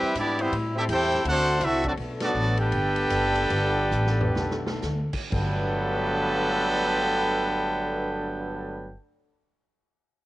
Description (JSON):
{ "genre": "jazz, big band swing", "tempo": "115-164 BPM", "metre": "4/4", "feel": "swing 63% on 8ths", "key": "G major", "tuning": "A4 = 441 Hz", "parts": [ { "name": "bright trumpet section", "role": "melody", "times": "0.0-9.0 s", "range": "G3 to G5", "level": "-26 LUFS", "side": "equal", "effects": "none" }, { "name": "bright trombone section", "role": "second line", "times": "0.0-8.9 s", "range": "G2 to G4", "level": "-29 LUFS", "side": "right 2 dB", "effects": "cassette tape" }, { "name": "clear trombone section", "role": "sustained chords", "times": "0.0-8.9 s", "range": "C3 to A4", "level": "-34 LUFS", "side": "left 2 dB", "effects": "cassette tape" }, { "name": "upright bass", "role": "bass", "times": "0.0-8.9 s", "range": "F#1 to A2", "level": "-30 LUFS", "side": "equal", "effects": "none" }, { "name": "swinging big-band drum kit", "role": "drums", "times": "0.2-5.5 s", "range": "crash cymbal, hi-hat, kick drum, ride cymbal, snare drum, toms", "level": "-35 LUFS", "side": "left 1 dB", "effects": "cassette tape" } ], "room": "moderate booth ambience, RT60 0.2 s", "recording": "home recording on cassette, nothing above 10.7 kHz", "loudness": "-22 LUFS", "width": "side -17 dB against mid", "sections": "0.0-5.3 A section; 5.3-9.5 B section", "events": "slowing down 2.0-5.3; band accent 2.2; drum fill 3.9-4.8", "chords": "0.0 Cmaj7; 0.5 Am7; 1.3 D7; 2.0 Gmaj9", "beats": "0.16 | 0.52 0.89 1.25 1.62 | 1.98 2.35 2.72 3.11 | 3.50 3.92 4.36 4.82 | 5.32 5.84 6.37 6.89 | 7.41 7.93 8.45" }